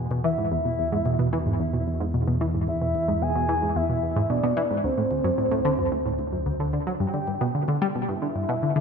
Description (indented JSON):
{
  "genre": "ambient, sequencer-driven space music",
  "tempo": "111 BPM",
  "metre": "4/4",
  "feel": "straight",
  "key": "unclear",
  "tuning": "A4 = 439 Hz",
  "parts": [
    { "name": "tight sequenced synth", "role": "riff", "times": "0.0-8.8 s", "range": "D2 to G3", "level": "-25 LUFS", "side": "equal", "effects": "chorus, analog delay" },
    { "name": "analog drone", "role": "bass", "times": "0.0-8.8 s", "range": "D2 to G2", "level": "-31 LUFS", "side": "equal", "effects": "chorus" },
    { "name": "soft octave-layered synth lead", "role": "melody", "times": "0.2-8.8 s", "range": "C5 to G#5", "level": "-27 LUFS", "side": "equal", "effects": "chorus, tremolo, analog delay" }
  ],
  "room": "wet concert hall reverb, RT60 2.0 s, digital ambience",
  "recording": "none",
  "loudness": "-22 LUFS",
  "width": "side -6 dB against mid",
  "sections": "0.0-7.0 A section; 7.0-8.8 B section",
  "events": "none",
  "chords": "0.0 E; 4.8 D7; 7.0 G5",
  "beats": "| 0.52 1.06 1.60 2.14 | 2.68 3.22 3.76 4.30 | 4.84 5.38 5.92 6.46 | 7.00 7.54 8.08 8.62"
}